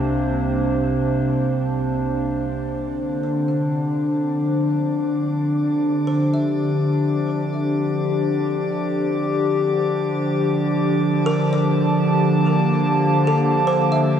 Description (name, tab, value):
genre	ambient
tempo	free time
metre	none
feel	none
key	D minor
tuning	A4 = 440 Hz
part	warbly tape-like pad	sustained chords	0.0-14.2 s	C3 to A5	-18 LUFS	equal	chorus, built-in reverb, shimmer reverb
part	rich studio double bass section	bass	0.0-2.8 s	C2	-31 LUFS	equal	none
part	drifting glass-harmonics texture	texture	3.8-14.2 s	D5 to D6	-32 LUFS	equal	chorus, built-in reverb, shimmer reverb
part	buzzing kalimba	arpeggios	3.2-14.2 s	A4 to F5	-28 LUFS	right 1 dB	diffuse ambient delay, shimmer reverb
room	wet cathedral reverb, RT60 6.7 s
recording	dark, warm production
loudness	-18 LUFS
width	side -8 dB against mid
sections	0.0-2.8 A section; 2.8-14.2 B section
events	fade-in on kalimba 2.8-14.2; fade-in on synth texture 2.8-14.2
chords	0.0 Csus2; 2.8 Dm11; 9.3 Gm9/D